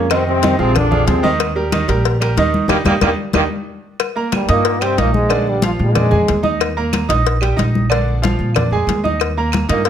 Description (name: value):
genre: latin, salsa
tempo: 185 BPM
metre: 4/4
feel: straight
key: Eb major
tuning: A4 = 440 Hz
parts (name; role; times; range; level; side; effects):
- bright trombone section; melody; 0.0-6.4, 9.7-9.9 s; G2 to F4; -18 LUFS; equal; none
- bright grand piano; accompaniment; 0.0-9.9 s; D3 to Eb6; -19 LUFS; right 4 dB; none
- upright bass; bass; 0.0-9.9 s; Bb1 to Bb2; -18 LUFS; equal; none
- claves; percussion; 0.1-9.7 s; none; -29 LUFS; right 12 dB; none
- congas; percussion; 0.1-9.9 s; none; -22 LUFS; left 2 dB; none
- cowbell; percussion; 0.1-9.9 s; none; -22 LUFS; left 12 dB; none
room: moderate large studio reverb, RT60 1.1 s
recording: close, detailed microphones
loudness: -14 LUFS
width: side -9 dB against mid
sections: 0.0-4.0 A section; 4.0-9.9 B section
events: band accent 2.7-4.0; drum fill 3.4-4.0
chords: 0.1 Fm7; 1.4 Ebmaj7; 4.0 Eb6; 5.3 Bb7; 6.6 Eb; 7.9 Bb7; 9.2 Eb